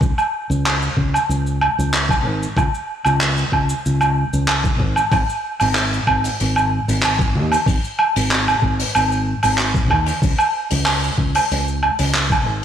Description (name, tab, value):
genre	sunset chillout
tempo	94 BPM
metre	4/4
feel	straight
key	unclear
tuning	A4 = 440 Hz
part	fingered electric bass	bass	0.0-12.6 s	Ab1 to Eb2	-20 LUFS	equal	none
part	electronic kick drum	drums	0.0-12.4 s	none	-20 LUFS	equal	none
part	jazz brush drum kit	drums	0.0-12.4 s	cabasa, handclaps, hi-hat, woodblock	-18 LUFS	right 1 dB	none
room	moderate lush hall reverb, RT60 2.0 s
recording	blown-out, overdriven recording, overdrive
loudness	-16 LUFS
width	side -9 dB against mid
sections	0.0-12.6 A section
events	none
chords	none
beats	| 0.02 0.66 1.29 1.93 | 2.57 3.21 3.85 4.49 | 5.12 5.76 6.40 7.04 | 7.68 8.31 8.95 9.59 | 10.23 10.87 11.51 12.14